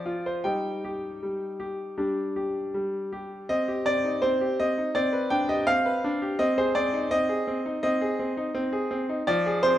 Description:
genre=classical-period piano sonatina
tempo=81 BPM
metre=4/4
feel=uneven beats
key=unclear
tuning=A4 = 439 Hz
part: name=bright grand piano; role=solo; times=0.0-9.8 s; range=F3 to G5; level=-24 LUFS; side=equal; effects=none
room=moderate recital hall reverb, RT60 1.5 s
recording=dark, warm production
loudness=-24 LUFS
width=side -12 dB against mid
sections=0.0-3.5 A section; 3.5-9.8 B section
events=none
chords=0.4 Eb/G; 2.0 G5; 3.5 Cm; 5.0 G/C; 6.4 Ab/C

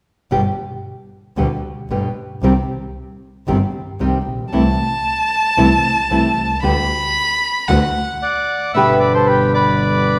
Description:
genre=tango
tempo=114 BPM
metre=4/4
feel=rubato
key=G major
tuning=A4 = 439 Hz
part: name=nylon-string guitar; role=accompaniment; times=0.3-10.2 s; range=B2 to G4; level=-21 LUFS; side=equal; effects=none
part: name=clear double bass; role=bass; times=0.3-10.2 s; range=G1 to D2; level=-23 LUFS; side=equal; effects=none
part: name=warm violin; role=second line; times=4.5-8.2 s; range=F#5 to B5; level=-20 LUFS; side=equal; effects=none
part: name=bandoneon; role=melody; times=8.2-10.2 s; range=G4 to F#5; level=-18 LUFS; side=equal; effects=none
room=wet recital hall reverb, RT60 1.5 s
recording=recorded in a church or concert hall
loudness=-17 LUFS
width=mono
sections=0.3-8.8 A section; 8.8-10.2 B section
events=stop 8.2-8.8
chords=0.3 G; 2.4 Cm; 4.5 Am/C; 6.6 G/D; 7.7 D; 8.8 G

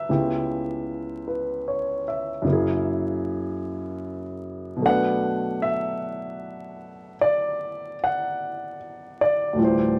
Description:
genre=jazz ballad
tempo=51 BPM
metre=4/4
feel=swing 66% on 8ths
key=unclear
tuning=A4 = 441 Hz
part: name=warm grand piano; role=solo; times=0.0-10.0 s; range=C#2 to F#5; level=-26 LUFS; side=equal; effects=none
room=moderate large studio reverb, RT60 1.1 s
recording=vinyl crackle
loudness=-26 LUFS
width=mono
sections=0.0-10.0 A section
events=none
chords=0.1 C#m7b5; 2.4 F#7; 4.8 Bm7

